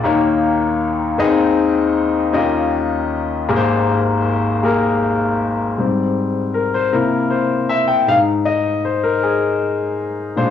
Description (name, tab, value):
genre	gospel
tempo	52 BPM (dotted quarters)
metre	6/8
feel	straight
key	Ab major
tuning	A4 = 438 Hz
part	warm baby grand piano	solo	0.0-10.5 s	Ab1 to G5	-15 LUFS	left 3 dB	cassette tape
room	moderate booth ambience, RT60 0.2 s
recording	home recording on cassette, studio reverb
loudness	-15 LUFS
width	side -9 dB against mid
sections	0.0-5.8 A section; 5.8-10.5 B section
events	grand piano solo 5.8-10.5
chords	0.0 Eb7; 1.2 Ab/Eb; 2.3 Eb9; 3.5 Abmaj9; 6.9 C7; 8.1 Abadd9